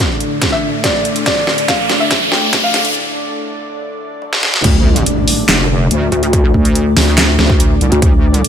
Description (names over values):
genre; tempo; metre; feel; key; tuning
heavy wobble dubstep; 142 BPM; 4/4; half-time; unclear; A4 = 440 Hz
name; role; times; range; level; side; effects
lush unison pad; sustained chords; 0.0-8.5 s; A2 to D5; -20 LUFS; left 1 dB; chorus, sidechain pumping
riser and impact; sound effects; 0.1-6.3 s; none; -19 LUFS; equal; none
dubstep drum kit; drums; 0.2-8.5 s; crash cymbal, handclaps, hi-hat, snare drum, toms; -15 LUFS; equal; overdrive, high-pass filter on snare, high-pass filter on toms, high-pass filter on hats, high-pass filter on cymbals, high-pass filter on room
electronic kick drum; drums; 0.4-8.1 s; none; -15 LUFS; equal; none
warm grand piano; melody; 0.5-2.9 s; D5 to G5; -20 LUFS; left 1 dB; ping-pong delay
wobble bass; bass; 4.6-8.4 s; F1 to D2; -13 LUFS; equal; chorus, overdrive
pulsing pluck wobble bass; bass; 6.1-8.0 s; D2; -12 LUFS; left 1 dB; chorus, overdrive
room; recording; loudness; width
light reverb; high-pass filter; -10 LUFS; side -8 dB against mid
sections
0.0-4.6 A section; 4.6-8.5 B section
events
build-up 0.0-4.6; drum fill 0.0-3.0, 4.2-4.6; filter sweep 0.0-4.6; riser 0.1-3.0; break 3.0-4.6; drop 4.6-8.5; impact 4.6-6.3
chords
0.0 D5